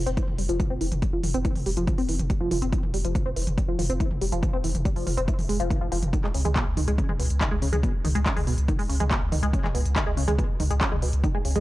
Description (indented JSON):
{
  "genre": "driving peak-time techno",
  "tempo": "141 BPM",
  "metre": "4/4",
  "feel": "straight",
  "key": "unclear",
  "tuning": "A4 = 440 Hz",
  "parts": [
    { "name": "saturated sub bass", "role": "bass", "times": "0.0-11.6 s", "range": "F1 to Db2", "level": "-26 LUFS", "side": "equal", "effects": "tube saturation, sidechain pumping, low-pass filter" },
    { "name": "tight sequenced synth", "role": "riff", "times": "0.1-11.6 s", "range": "B2 to C4", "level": "-29 LUFS", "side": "equal", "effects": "chorus, phaser, sidechain pumping, tape echo" },
    { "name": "techno drum kit", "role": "drums", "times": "0.1-11.6 s", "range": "handclaps, hi-hat, toms", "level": "-31 LUFS", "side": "equal", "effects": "overdrive, sidechain pumping on hats, studio ambience, sidechain pumping on toms, sidechain pumping on cymbals" },
    { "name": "electronic kick drum", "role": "drums", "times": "0.2-11.3 s", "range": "none", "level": "-27 LUFS", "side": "equal", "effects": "overdrive, studio ambience" }
  ],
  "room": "little or no reverb",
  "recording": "dry, gritty hardware recording, transformer saturation, cassette tape",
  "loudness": "-22 LUFS",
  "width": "side -17 dB against mid",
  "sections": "0.0-11.6 A section",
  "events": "none",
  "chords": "0.0 N.C.; 6.1 Db5"
}